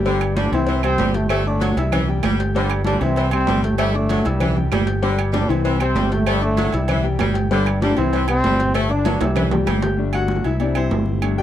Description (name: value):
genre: latin, salsa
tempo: 193 BPM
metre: 4/4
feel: straight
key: unclear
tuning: A4 = 437 Hz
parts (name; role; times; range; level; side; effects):
- clear grand piano; accompaniment; 0.0-11.4 s; E3 to G6; -25 LUFS; left 5 dB; none
- modern bright picked electric bass; bass; 0.0-11.4 s; G1 to C2; -22 LUFS; equal; none
- warm trombone section; melody; 0.1-9.8 s; G2 to D4; -22 LUFS; equal; none
- bright saxophone section; second line; 0.1-9.8 s; D3 to A3; -25 LUFS; equal; none
- congas; percussion; 0.1-11.4 s; none; -25 LUFS; right 1 dB; none
- cowbell and bongos; percussion; 0.1-10.0 s; none; -30 LUFS; left 7 dB; none
- agogo bells and timbales; percussion; 0.2-11.4 s; none; -29 LUFS; right 9 dB; none
- claves; percussion; 0.2-11.4 s; none; -31 LUFS; right 20 dB; none
room: little or no reverb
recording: dry, close 1970s-style studio recording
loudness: -17 LUFS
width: side -11 dB against mid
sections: 0.1-10.0 A section; 10.0-11.4 B section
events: drum fill 9.1-10.0; grand piano solo 10.0-11.4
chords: 0.1 G5; 0.7 C; 1.3 Gsus2; 1.9 C; 2.5 G5; 3.2 C; 3.8 Gsus2; 4.4 C; 5.0 G5; 5.6 C; 6.3 Gsus2; 6.9 C; 7.5 G5; 8.1 C; 8.7 Gsus2; 9.4 C; 10.0 Gsus2; 10.6 C